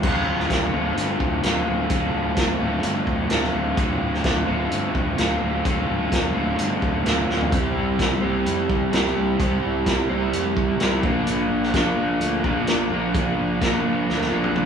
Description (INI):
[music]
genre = classic rock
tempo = 128 BPM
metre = 4/4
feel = straight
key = D minor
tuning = A4 = 440 Hz
[part]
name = raw garage guitar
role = riff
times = 0.0-14.7 s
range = D2 to C5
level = -22 LUFS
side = equal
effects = overdrive
[part]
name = fuzz fingered electric bass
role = bass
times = 0.0-14.7 s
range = D1 to D2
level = -27 LUFS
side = equal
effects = overdrive
[part]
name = vintage drum kit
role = drums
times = 0.0-14.7 s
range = crash cymbal, hi-hat, kick drum, snare drum, toms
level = -25 LUFS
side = equal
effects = none
[sound]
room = moderate studio reverb, RT60 0.5 s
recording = band playing live in one room, studio ambience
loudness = -19 LUFS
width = side -7 dB against mid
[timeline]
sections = 0.0-14.7 A section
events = drum fill 7.3, 14.1-14.7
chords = 0.0 Dm7; 7.5 C; 11.0 Bb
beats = | 0.04 0.50 0.97 1.44 | 1.91 2.38 2.84 3.31 | 3.78 4.25 4.72 5.18 | 5.65 6.12 6.59 7.06 | 7.53 8.00 8.46 8.93 | 9.40 9.87 10.34 10.81 | 11.28 11.74 12.21 12.68 | 13.15 13.62 14.09 14.56